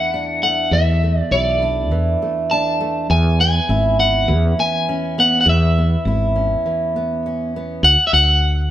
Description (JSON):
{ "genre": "indie folk with a building arrangement", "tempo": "101 BPM", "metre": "4/4", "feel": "straight", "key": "unclear", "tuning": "A4 = 440 Hz", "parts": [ { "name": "electric guitar at the edge of break-up", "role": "melody", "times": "0.0-8.7 s", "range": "D5 to A5", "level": "-17 LUFS", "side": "left 1 dB", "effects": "tremolo" }, { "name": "fingerpicked steel-string acoustic guitar", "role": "accompaniment", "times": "0.0-7.8 s", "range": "E2 to E4", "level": "-21 LUFS", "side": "right 2 dB", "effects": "none" }, { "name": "woody fretless electric bass", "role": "bass", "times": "0.7-8.7 s", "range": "G#1 to E2", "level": "-17 LUFS", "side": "equal", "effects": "none" } ], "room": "moderate stone room reverb, RT60 1.2 s", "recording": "band playing live in one room", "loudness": "-14 LUFS", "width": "side -12 dB against mid", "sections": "0.0-7.8 A section", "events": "break 6.7-7.8", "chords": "0.0 E7sus4; 3.1 C#m7; 7.8 D", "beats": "0.12 | 0.72 1.31 1.91 2.50 | 3.09 3.69 4.28 4.87 | 5.47 6.06 6.65 7.25 | 7.84 8.43" }